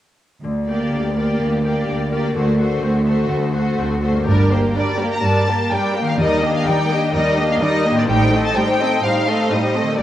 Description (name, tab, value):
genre	classical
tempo	126 BPM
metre	4/4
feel	straight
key	G minor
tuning	A4 = 440 Hz
part	concert harp	arpeggios	0.4-10.0 s	G2 to Bb4	-25 LUFS	left 3 dB	none
part	rich symphonic cello section	bass	0.4-10.0 s	D2 to A2	-22 LUFS	right 1 dB	none
part	rich symphonic violin section	melody	0.7-10.0 s	Bb4 to Bb5	-23 LUFS	left 2 dB	none
part	warm symphonic violin section	second line	0.7-10.0 s	F#4 to Eb5	-23 LUFS	left 1 dB	none
part	rich symphonic viola section	accompaniment	0.7-10.0 s	G3 to Eb4	-22 LUFS	right 1 dB	none
part	rich symphonic double bass section	bass	4.3-10.0 s	G1 to Eb2	-23 LUFS	right 3 dB	none
room	moderate scoring stage reverb, RT60 1.6 s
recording	worn, warbling old tape, cassette tape, warbly pitch drift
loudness	-16 LUFS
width	side -12 dB against mid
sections	0.4-4.3 A section; 4.3-10.0 B section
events	none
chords	0.4 Gm/D; 2.4 D7; 4.3 Gm; 6.2 Ebmaj7; 8.1 Am7b5